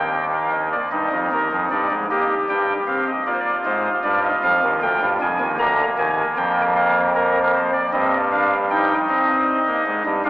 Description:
classical, baroque-style 3-part fugue for pipe organ; 51 BPM (dotted quarters); 12/8; straight; Eb major; A4 = 445 Hz
chamber organ, soft reed; solo; 0.0-10.3 s; D2 to Bb5; -17 LUFS; equal
wet cathedral reverb, RT60 5.1 s; recorded in a church or concert hall, AM radio sound; -17 LUFS; side -18 dB against mid
0.9-10.3 A section
0.0 Eb; 3.3 Bb7; 7.9 Eb/G
| 0.91 2.09 3.26 4.43 | 5.59 6.76 7.93 9.09 | 10.25

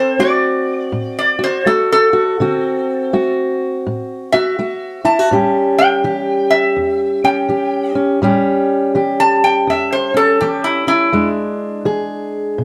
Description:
acoustic country blues, solo or duo; 82 BPM; 4/4; swing 63% on 8ths; A4 = 444 Hz
metal-body resonator slide guitar; melody; 0.0-11.3 s; E4 to A5; -18 LUFS; equal
fingerpicked steel-string acoustic guitar; accompaniment; 0.0-12.6 s; E2 to G#4; -18 LUFS; equal
moderate studio reverb, RT60 0.6 s; -16 LUFS; mono
0.0-12.6 A section
resonator guitar played with a steel bar solo 0.0-12.6
0.0 D7; 5.3 A7; 11.1 E7
0.20 0.93 1.66 | 2.39 3.12 3.85 4.58 | 5.30 6.03 6.76 7.49 | 8.22 8.95 9.68 10.40 | 11.13 11.86 12.59

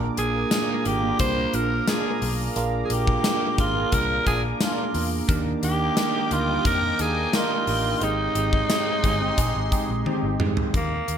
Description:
1980s-style pop; 88 BPM; 4/4; straight; Bb mixolydian; A4 = 441 Hz
bell-like tine electric piano; accompaniment; 0.0-10.8 s; Ab2 to Bb4; -27 LUFS; right 4 dB; phaser
sweeping resonant pad; sustained chords; 0.0-10.7 s; Ab3 to D6; -34 LUFS; equal; chorus
vintage muted fingered electric bass; bass; 0.0-11.2 s; G1 to Ab2; -28 LUFS; left 1 dB
growling tenor saxophone; melody; 0.2-11.2 s; A#3 to C5; -26 LUFS; equal
gated 80s drum kit; drums; 0.2-11.2 s; hi-hat, kick drum, snare drum, tambourine, toms; -26 LUFS; left 1 dB; gated reverb
mellow synth brass; stabs; 1.0-10.3 s; G3 to Bb4; -34 LUFS; left 1 dB; chorus, digital delay
moderate plate reverb, RT60 1.8 s; bright 1980s-style digital production; -21 LUFS; side -8 dB against mid
0.0-10.7 A section
drum fill 10.1-10.7
0.0 Bb7; 5.3 Ebmaj7; 8.0 Abmaj7
0.52 1.20 1.88 | 2.56 3.24 3.92 4.61 | 5.29 5.97 6.65 7.33 | 8.02 8.70 9.38 10.06 | 10.74

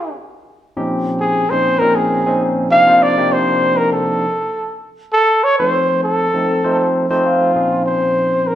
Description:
jazz; 99 BPM; 4/4; straight; A4 = 440 Hz
mellow trumpet; melody; 0.0-8.6 s; F4 to F5; -14 LUFS; equal
barky tine electric piano; accompaniment; 0.8-8.6 s; Bb2 to C5; -17 LUFS; equal; medium stereo tremolo
wet large studio reverb, RT60 1.4 s; band playing live in one room; -13 LUFS; side -11 dB against mid
0.0-7.6 A section
0.0 Bbm11; 2.7 Cm11; 5.1 F7; 7.6 Bbm11
| 0.31 0.92 1.52 2.12 | 2.73 3.33 3.93 4.54 | 5.14 5.74 6.35 6.95 | 7.56 8.16

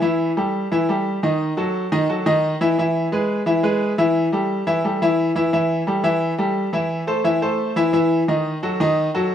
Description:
latin; 174 BPM; 4/4; straight; A4 = 440 Hz
bright baby grand piano; solo; 0.0-9.3 s; D#3 to E5; -18 LUFS; equal
wet stone room reverb, RT60 1.1 s; band playing live in one room; -18 LUFS; side -9 dB against mid
0.0-5.5 A section; 5.5-9.3 B section
0.0 A5; 1.4 D#dim; 2.8 E; 4.2 A5; 6.9 Am/E; 8.3 D#dim
| 0.02 0.37 0.71 1.06 | 1.40 1.74 2.09 2.43 | 2.78 3.12 3.46 3.81 | 4.15 4.50 4.84 5.18 | 5.53 5.87 6.22 6.56 | 6.90 7.25 7.59 7.93 | 8.28 8.62 8.97 9.31

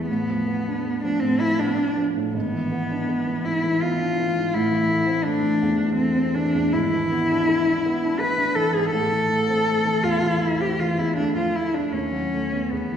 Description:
classical, romantic duo for cello and grand piano; 80 BPM; 3/4; rubato; A minor; A4 = 440 Hz
rich cello; melody; 0.0-13.0 s; B3 to B4; -22 LUFS; left 1 dB
warm baby grand piano; accompaniment; 0.0-13.0 s; G#1 to E4; -24 LUFS; right 1 dB
wet concert hall reverb, RT60 2.1 s; heard from further back in the room; -20 LUFS; side -8 dB against mid
0.0-13.0 A section
0.1 Bm7b5/A; 2.3 E7/G#; 4.5 Am; 6.7 E7/G#; 8.9 Am; 11.2 Dm; 11.9 B7/D#
| 0.07 0.83 1.59 | 2.34 3.09 3.82 | 4.54 5.25 5.98 | 6.73 7.48 8.20 | 8.93 9.67 10.43 | 11.18 11.93 12.71

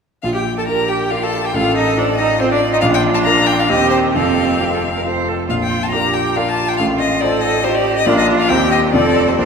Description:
quick classical-period movement for piano quartet; 139 BPM; 3/4; straight; Bb major; A4 = 440 Hz
clear violin; melody; 0.2-9.5 s; C5 to Bb5; -18 LUFS; left 5 dB
rich viola; accompaniment; 0.2-9.5 s; C4 to Bb4; -21 LUFS; right 3 dB
warm concert grand piano; accompaniment; 0.2-9.5 s; F1 to C5; -18 LUFS; equal
rich cello; second line; 0.7-9.5 s; F4 to C5; -21 LUFS; right 4 dB
wet church reverb, RT60 3.2 s; recorded in a church or concert hall; -13 LUFS; side -6 dB against mid
0.2-9.5 A section
0.2 Bb; 1.5 F7/A; 2.8 Bb; 3.7 Cm/Eb; 4.2 F; 5.5 Bb; 6.8 F7/A; 8.1 Bb; 8.5 Cm/Eb; 8.9 F
| 0.23 0.68 1.12 | 1.54 1.97 2.40 | 2.83 3.26 3.69 | 4.15 4.60 5.05 | 5.49 5.93 6.36 | 6.79 7.22 7.64 | 8.07 8.50 8.94 | 9.39

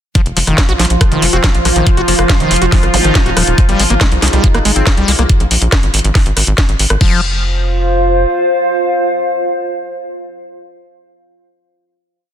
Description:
psychedelic trance; 140 BPM; 4/4; straight; F minor; A4 = 441 Hz
bubbling stepped-filter texture; sustained chords; 0.4-5.3 s; F3 to F4; -18 LUFS; equal; chorus, built-in reverb, sidechain pumping
overdriven acid bass; riff; 0.2-7.2 s; Eb3 to Gb4; -19 LUFS; moving between left 6 dB and right 6 dB; auto-pan, sidechain pumping, dub echo
drum and bass drum kit; drums; 0.2-7.1 s; crash cymbal, hi-hat, rim click, snare drum; -16 LUFS; equal
electronic kick drum; drums; 0.2-7.1 s; -11 LUFS; equal
warbly tape-like pad; texture; 0.8-10.8 s; Eb4 to F5; -17 LUFS; equal; chorus, built-in reverb, sidechain pumping
tight sequencer bass; bass; 0.3-8.3 s; Eb1 to C2; -15 LUFS; equal
metallic wobble bass; second line; 1.3-5.3 s; Bb3 to Eb4; -26 LUFS; left 2 dB
zap; sound effects; 2.9-3.0 s; -25 LUFS; equal
light reverb; dense, heavily limited modern master; -10 LUFS; side -10 dB against mid
0.2-7.0 drop; 7.0-10.4 final chord
drop 0.2-7.0
0.2 F5; 3.6 Ab5; 7.0 F5
| 0.15 0.58 1.01 1.44 | 1.87 2.29 2.72 3.15 | 3.58 4.01 4.44 4.87 | 5.29 5.72 6.15 6.58 | 7.01 7.44 7.87 8.29 | 8.72 9.15 9.58 10.01

